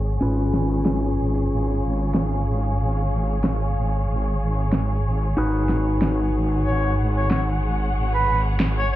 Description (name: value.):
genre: glitch hop.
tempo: 93 BPM.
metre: 4/4.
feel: swing 57% on 16ths.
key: unclear.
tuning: A4 = 440 Hz.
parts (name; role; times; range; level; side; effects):
clean electric guitar; stabs; 0.0-9.0 s; C#4 to B4; -26 LUFS; left 1 dB; digital delay.
wobble bass; bass; 0.0-9.0 s; G#1; -22 LUFS; equal; chorus.
bright studio string section; texture; 0.0-9.0 s; G#4 to F#5; -30 LUFS; equal; none.
electronic snare drum; drums; 0.5-8.7 s; none; -26 LUFS; equal; none.
warm harmonica; melody; 6.7-9.0 s; B4 to C#5; -25 LUFS; right 2 dB; digital delay.
room: light reverb, small room ambience.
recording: bright 1980s-style digital production, low-pass filter.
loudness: -20 LUFS.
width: side -14 dB against mid.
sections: 0.0-9.0 A section.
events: filter sweep 0.0-9.0.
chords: 0.2 C#7/G#; 5.4 G#m7.